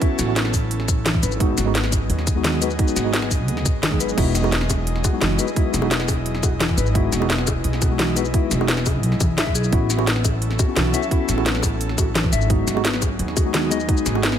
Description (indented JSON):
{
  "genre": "liquid drum and bass",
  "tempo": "173 BPM",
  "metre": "4/4",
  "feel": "straight",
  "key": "E major",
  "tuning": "A4 = 442 Hz",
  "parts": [
    { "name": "mellow tine electric piano", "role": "accompaniment", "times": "0.0-14.2 s", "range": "G#3 to G#4", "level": "-26 LUFS", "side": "right 2 dB", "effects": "medium stereo tremolo, tape echo" },
    { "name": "airy breathy pad", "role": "sustained chords", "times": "0.0-14.4 s", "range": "F#3 to D#5", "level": "-29 LUFS", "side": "equal", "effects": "chorus, vintage 12-bit sampler grit, sidechain pumping" },
    { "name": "mellow electric guitar", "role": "arpeggios", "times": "0.0-14.4 s", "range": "D#3 to E5", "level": "-27 LUFS", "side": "left 4 dB", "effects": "ping-pong delay" },
    { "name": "electronic kick drum", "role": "drums", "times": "0.0-14.0 s", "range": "none", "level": "-21 LUFS", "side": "equal", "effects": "none" },
    { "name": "garage drum kit", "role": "drums", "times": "0.0-14.4 s", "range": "crash cymbal, hi-hat, shaker, snare drum", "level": "-24 LUFS", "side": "equal", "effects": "none" },
    { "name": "upright bass", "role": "bass", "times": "0.2-14.4 s", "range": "E1 to D#2", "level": "-23 LUFS", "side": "equal", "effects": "tube saturation" },
    { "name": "bongos", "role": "percussion", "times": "4.4-14.2 s", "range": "none", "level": "-31 LUFS", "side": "left 8 dB", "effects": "none" }
  ],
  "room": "light reverb, digital ambience",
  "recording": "none",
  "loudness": "-18 LUFS",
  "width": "side -9 dB against mid",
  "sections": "0.0-14.4 A section",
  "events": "none",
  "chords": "0.0 A6; 1.4 G#m7; 4.2 Emaj9; 9.7 A6; 12.5 G#m7"
}